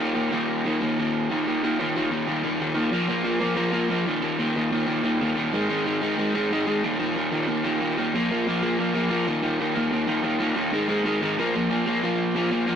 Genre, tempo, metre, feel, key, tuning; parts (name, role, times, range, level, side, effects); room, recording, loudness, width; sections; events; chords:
punk; 184 BPM; 4/4; straight; A4 = 440 Hz
crunchy overdriven guitar; solo; 0.0-12.8 s; Eb2 to Bb3; -22 LUFS; equal
moderate stone room reverb, RT60 1.4 s; rough rehearsal-room recording; -22 LUFS; side -8 dB against mid
0.0-1.6 A section; 1.6-12.0 B section
0.0 Eb5; 2.9 Bb5; 4.1 Eb5; 5.5 Ab5; 6.8 Eb5; 8.1 Bb5; 9.3 Eb5; 10.7 Ab5; 11.4 Bb5